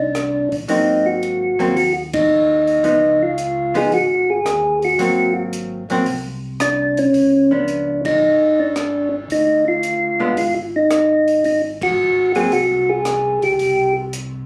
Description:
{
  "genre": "soul jazz organ trio",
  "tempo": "112 BPM",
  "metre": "4/4",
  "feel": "swing 69% on 8ths",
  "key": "unclear",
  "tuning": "A4 = 436 Hz",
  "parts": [
    { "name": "percussive tonewheel organ", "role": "melody", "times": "0.0-13.9 s", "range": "Db4 to Ab4", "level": "-18 LUFS", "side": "equal", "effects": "slow rotary speaker" },
    { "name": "mellow tonewheel organ", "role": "bass", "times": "0.0-14.5 s", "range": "Ab1 to Eb2", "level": "-34 LUFS", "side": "equal", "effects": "slow rotary speaker" },
    { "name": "compact cocktail drum kit", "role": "drums", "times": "0.1-14.3 s", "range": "hi-hat, kick drum, ride cymbal, rim click", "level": "-33 LUFS", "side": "equal", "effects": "none" },
    { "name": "hollow-body jazz guitar", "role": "accompaniment", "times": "0.7-12.5 s", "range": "D3 to F4", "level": "-23 LUFS", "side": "equal", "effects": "none" }
  ],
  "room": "light reverb",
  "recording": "recorded on a phone in the room, club reverb",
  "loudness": "-17 LUFS",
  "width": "mono",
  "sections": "0.0-14.5 A section",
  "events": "band accent 2.0, 7.9, 11.7",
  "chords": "0.0 Ab9; 2.8 Db9; 5.0 Ab9; 7.1 Db9; 9.3 Ddim; 11.4 Ab7; 13.6 C5",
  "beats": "0.15 | 0.69 1.23 1.76 2.30 | 2.84 3.38 3.91 4.45 | 4.99 5.53 6.06 6.60 | 7.14 7.68 8.21 8.75 | 9.29 9.83 10.37 10.90 | 11.44 11.98 12.52 13.06 | 13.60 14.13"
}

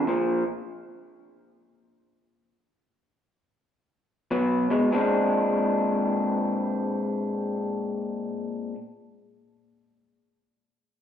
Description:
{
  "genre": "blues",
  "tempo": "free time",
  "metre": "none",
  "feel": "none",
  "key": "Bb mixolydian",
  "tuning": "A4 = 439 Hz",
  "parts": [
    { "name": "electric guitar through a small old amp", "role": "solo", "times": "0.0-0.4, 4.3-8.8 s", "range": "Bb2 to D4", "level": "-24 LUFS", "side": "left 1 dB", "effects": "spring reverb, slapback echo" }
  ],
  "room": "light reverb, digital ambience",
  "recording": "live gig heard through the venue's PA, club reverb",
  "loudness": "-24 LUFS",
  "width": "side -9 dB against mid",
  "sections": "0.0-4.9 A section; 4.9-7.3 B section",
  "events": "stop 0.1-4.3",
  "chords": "0.1 Bb5; 4.3 B5; 4.9 Bb9",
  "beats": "free time"
}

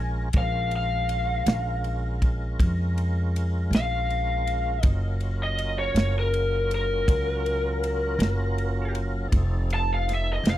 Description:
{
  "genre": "slow blues",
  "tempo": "53 BPM (dotted quarters)",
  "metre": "12/8",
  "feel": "straight",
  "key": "Bb minor",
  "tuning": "A4 = 440 Hz",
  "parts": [
    { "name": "lead guitar through a small cranked amp", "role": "melody", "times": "0.0-10.6 s", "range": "Bb4 to A5", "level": "-28 LUFS", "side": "left 2 dB", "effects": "overdrive" },
    { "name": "tonewheel organ", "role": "sustained chords", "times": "0.0-10.6 s", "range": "F3 to Bb4", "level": "-34 LUFS", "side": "right 2 dB", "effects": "overdrive, chorus vibrato, slow rotary speaker" },
    { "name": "upright bass", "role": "bass", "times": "0.0-10.6 s", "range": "F1 to F2", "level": "-26 LUFS", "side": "equal", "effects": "none" },
    { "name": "natural country drum kit", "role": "drums", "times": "0.3-10.6 s", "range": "kick drum, ride cymbal, snare drum", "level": "-23 LUFS", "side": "equal", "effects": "none" }
  ],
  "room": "little or no reverb",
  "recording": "dry, close 1970s-style studio recording",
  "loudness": "-23 LUFS",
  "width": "side -13 dB against mid",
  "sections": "0.0-10.6 A section",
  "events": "lead electric guitar solo 0.0-10.6",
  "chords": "0.0 Bbm7; 4.8 Gbmaj7; 9.3 F7",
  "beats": "| 0.33 1.46 2.58 3.70 | 4.83 5.95 7.08 8.20 | 9.32 10.44"
}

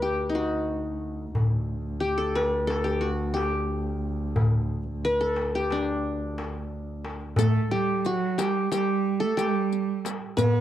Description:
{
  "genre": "Turkish makam ensemble",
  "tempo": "179 BPM (eighths)",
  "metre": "9/8",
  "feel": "straight",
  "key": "D makam hicaz",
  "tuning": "A4 = 440 Hz",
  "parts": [
    { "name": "qanun", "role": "melody", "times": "0.0-10.6 s", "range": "D4 to B4-40c", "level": "-27 LUFS", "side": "left 2 dB", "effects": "none" },
    { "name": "rich double bass", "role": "drone", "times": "0.0-7.5 s", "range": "D2", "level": "-32 LUFS", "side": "right 1 dB", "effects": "stereo widening" },
    { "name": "darbuka", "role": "percussion", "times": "1.3-10.5 s", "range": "none", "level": "-27 LUFS", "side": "left 1 dB", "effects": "none" },
    { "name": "clear cello", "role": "second line", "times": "7.4-10.6 s", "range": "F#3 to B3-35c", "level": "-27 LUFS", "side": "right 12 dB", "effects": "none" },
    { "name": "riq", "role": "percussion", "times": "7.4-10.5 s", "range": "none", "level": "-34 LUFS", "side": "left 12 dB", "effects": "none" }
  ],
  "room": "light reverb",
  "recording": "dry, close 1970s-style studio recording",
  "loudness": "-24 LUFS",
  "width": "side -11 dB against mid",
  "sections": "0.0-7.4 A section; 7.4-10.6 B section",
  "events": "none",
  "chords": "none",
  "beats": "0.01 0.35 0.68 1.02 | 1.35 1.69 2.02 2.36 2.69 3.03 3.36 3.70 4.03 | 4.37 4.70 5.04 5.37 5.71 6.04 6.38 6.71 7.04 | 7.38 7.71 8.05 8.38 8.72 9.05 9.39 9.72 10.06 | 10.39"
}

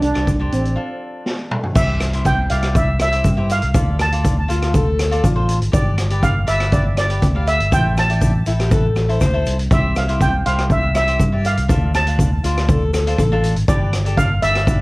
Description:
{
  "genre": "calypso",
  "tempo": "121 BPM",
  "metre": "4/4",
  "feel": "straight",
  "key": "C major",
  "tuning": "A4 = 440 Hz",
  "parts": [
    { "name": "steel pan", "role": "melody", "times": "0.0-14.8 s", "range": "C4 to A5", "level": "-21 LUFS", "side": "right 1 dB", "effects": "plate reverb, tape echo" },
    { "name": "fingered electric bass", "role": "bass", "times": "0.0-14.8 s", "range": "G1 to G2", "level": "-19 LUFS", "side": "equal", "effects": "none" },
    { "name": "street-band drum kit", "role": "drums", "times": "0.0-14.8 s", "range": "crash cymbal, hi-hat, kick drum, rim click, snare drum, toms", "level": "-19 LUFS", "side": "equal", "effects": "none" },
    { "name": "egg shaker", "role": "percussion", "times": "0.0-14.8 s", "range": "none", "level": "-40 LUFS", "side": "left 7 dB", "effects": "none" },
    { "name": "cavaquinho", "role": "accompaniment", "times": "0.1-14.8 s", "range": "D4 to F5", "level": "-27 LUFS", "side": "left 1 dB", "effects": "none" },
    { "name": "clear alto saxophone", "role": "second line", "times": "4.5-13.5 s", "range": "E4 to C5", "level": "-22 LUFS", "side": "left 3 dB", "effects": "none" }
  ],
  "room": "light reverb",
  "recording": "worn, warbling old tape, cassette tape, warbly pitch drift",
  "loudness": "-15 LUFS",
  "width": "side -22 dB against mid",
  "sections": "0.0-1.8 A section; 1.8-14.8 B section",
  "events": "break 0.8-1.8; drum fill 1.3-1.8",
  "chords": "0.0 Csus2; 0.8 Dm; 1.8 C; 3.7 Dm; 5.7 G; 7.7 Am; 9.7 C; 11.7 Dm; 13.7 G",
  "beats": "0.27 0.77 1.27 | 1.76 2.26 2.76 3.25 | 3.75 4.25 4.74 5.24 | 5.73 6.23 6.73 7.22 | 7.72 8.22 8.71 9.21 | 9.71 10.20 10.70 11.20 | 11.69 12.19 12.69 13.18 | 13.68 14.18 14.67"
}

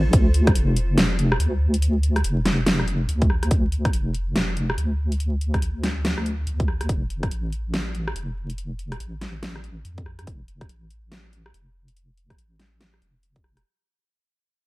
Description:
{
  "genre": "deep dubstep",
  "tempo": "142 BPM",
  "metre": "4/4",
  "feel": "swing 61% on 16ths, half-time",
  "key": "D minor",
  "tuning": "A4 = 438 Hz",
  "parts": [
    { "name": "deep soft wobble bass", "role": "bass", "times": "0.0-13.6 s", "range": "F1 to F2", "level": "-23 LUFS", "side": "equal", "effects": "chorus" },
    { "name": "dubstep drum kit", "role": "drums", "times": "0.1-13.6 s", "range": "hi-hat, rim click, snare drum", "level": "-25 LUFS", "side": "equal", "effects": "none" },
    { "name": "electronic kick drum", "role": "drums", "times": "0.1-0.5, 3.2-7.3, 10.0-13.4 s", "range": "none", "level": "-21 LUFS", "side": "equal", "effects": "none" }
  ],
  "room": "little or no reverb",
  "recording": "vinyl crackle",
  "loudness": "-20 LUFS",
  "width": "side -20 dB against mid",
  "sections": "0.1-13.7 A section",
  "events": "fade-out 0.1-13.7",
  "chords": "none",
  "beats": "| 0.13 0.55 0.97 1.40 | 1.82 2.24 2.67 3.09 | 3.51 3.93 4.36 4.78 | 5.20 5.62 6.05 6.47 | 6.89 7.31 7.74 8.16 | 8.58 9.00 9.43 9.85 | 10.27 10.69 11.12 11.54 | 11.96 12.38 12.81 13.23"
}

